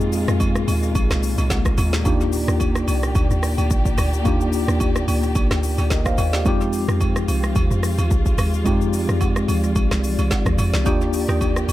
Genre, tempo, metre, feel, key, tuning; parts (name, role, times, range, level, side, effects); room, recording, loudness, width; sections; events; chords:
amapiano; 109 BPM; 4/4; swing 55% on 16ths; A4 = 440 Hz
tine electric piano; accompaniment; 0.0-11.7 s; Ab3 to F5; -24 LUFS; left 2 dB; medium stereo tremolo, analog delay
dark studio string section; sustained chords; 0.0-11.7 s; Bb2 to D5; -29 LUFS; equal
deep log drum bass; bass; 0.0-11.7 s; Bb1 to F2; -21 LUFS; equal
afro-pop drum kit; drums; 0.0-11.7 s; hi-hat, kick drum, rim click, shaker, snare drum; -22 LUFS; equal
agogo bells and woodblock; percussion; 0.4-11.7 s; -33 LUFS; right 2 dB; analog delay
marimba with medium hard mallets; stabs; 10.9-11.4 s; Eb4 to D5; -28 LUFS; equal; analog delay
studio reverb; echo-heavy mix; -17 LUFS; side -15 dB against mid
0.0-11.7 A section
0.0 Fm7; 2.1 Ebmaj7; 6.5 Fm7; 10.9 Ebmaj7